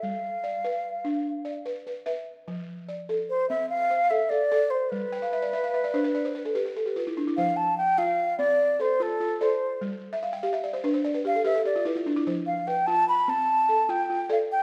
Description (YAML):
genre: west african traditional, West African string and xylophone music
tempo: 98 BPM (dotted quarters)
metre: 12/8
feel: straight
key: F lydian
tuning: A4 = 438 Hz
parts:
  - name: breathy mellow concert flute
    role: melody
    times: 0.0-14.6 s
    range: A4 to B5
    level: -27 LUFS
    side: equal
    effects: none
  - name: balafon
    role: arpeggios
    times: 0.0-14.6 s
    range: F3 to G5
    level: -31 LUFS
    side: equal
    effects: none
room: moderate recital hall reverb, RT60 1.6 s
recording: none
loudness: -26 LUFS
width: mono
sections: 0.0-7.4 A section; 7.4-14.6 B section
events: balafon fill 5.1-7.4, 10.1-12.3; flute solo 7.4-14.6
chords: 0.0 G; 2.5 F; 4.9 G; 7.4 F; 9.8 G; 12.3 F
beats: | 0.03 0.65 1.26 1.87 | 2.48 3.09 3.71 4.32 | 4.93 5.54 6.15 6.76 | 7.38 7.99 8.60 9.21 | 9.82 10.43 11.04 11.65 | 12.27 12.88 13.49 14.10